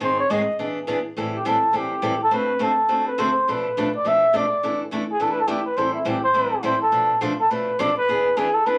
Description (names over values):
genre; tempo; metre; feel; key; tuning
jazz; 208 BPM; 4/4; swing 59% on 8ths; A minor; A4 = 440 Hz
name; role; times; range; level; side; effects
breathy trumpet; melody; 0.0-8.8 s; E4 to E5; -22 LUFS; equal; none
picked steel-string acoustic guitar; accompaniment; 0.0-8.8 s; G#2 to A4; -28 LUFS; equal; none
room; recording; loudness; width
wet small room reverb, RT60 0.5 s; vinyl crackle; -22 LUFS; mono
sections
0.0-1.2 A section; 1.2-8.8 A section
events
trumpet solo 0.0-1.2, 1.2-8.8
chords
0.0 G#; 0.6 E7; 1.2 Am7; 2.3 D7; 3.5 Bm7b5; 4.6 E7sus4; 5.8 Am7; 6.9 Bm7b5; 8.1 E7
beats
| 0.01 0.30 0.59 0.88 | 1.17 1.45 1.74 2.03 | 2.32 2.61 2.90 3.18 | 3.47 3.76 4.05 4.34 | 4.62 4.91 5.20 5.49 | 5.77 6.06 6.35 6.64 | 6.92 7.21 7.50 7.79 | 8.07 8.36 8.65